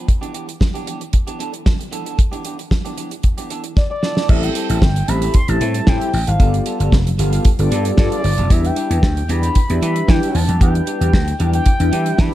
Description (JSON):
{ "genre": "early-eighties boogie funk", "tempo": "114 BPM", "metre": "4/4", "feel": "straight", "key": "unclear", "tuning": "A4 = 440 Hz", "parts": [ { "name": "electric guitar at the edge of break-up", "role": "riff", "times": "0.0-12.3 s", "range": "E3 to A4", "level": "-28 LUFS", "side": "right 3 dB", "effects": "lush chorus" }, { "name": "damped 70s drum kit", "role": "drums", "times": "0.1-12.3 s", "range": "crash cymbal, hi-hat, kick drum, snare drum", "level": "-16 LUFS", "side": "equal", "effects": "none" }, { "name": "expressive portamento lead", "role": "melody", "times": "3.8-12.3 s", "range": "D5 to C6", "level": "-25 LUFS", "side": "left 1 dB", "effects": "chorus, slapback echo" }, { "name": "mellow synth brass", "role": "accompaniment", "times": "4.3-12.3 s", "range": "B3 to G5", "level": "-24 LUFS", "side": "left 1 dB", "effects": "chorus" }, { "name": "vintage slap bass", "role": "bass", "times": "4.3-12.3 s", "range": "F1 to E3", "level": "-18 LUFS", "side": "equal", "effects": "none" }, { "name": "mellow synth brass", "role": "second line", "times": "5.5-12.3 s", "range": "C4 to A4", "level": "-25 LUFS", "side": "left 2 dB", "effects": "chorus" } ], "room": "studio ambience", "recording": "dark, warm production", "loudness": "-14 LUFS", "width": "side -14 dB against mid", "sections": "0.0-4.3 A section; 4.3-12.3 B section", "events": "drum fill 3.8-4.3", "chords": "0.1 Em7; 4.3 Am7; 6.4 G9; 8.5 Em7", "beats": "| 0.08 0.61 1.14 1.66 | 2.19 2.71 3.24 3.77 | 4.29 4.82 5.35 5.87 | 6.40 6.92 7.45 7.98 | 8.50 9.03 9.56 10.08 | 10.61 11.14 11.66 12.19" }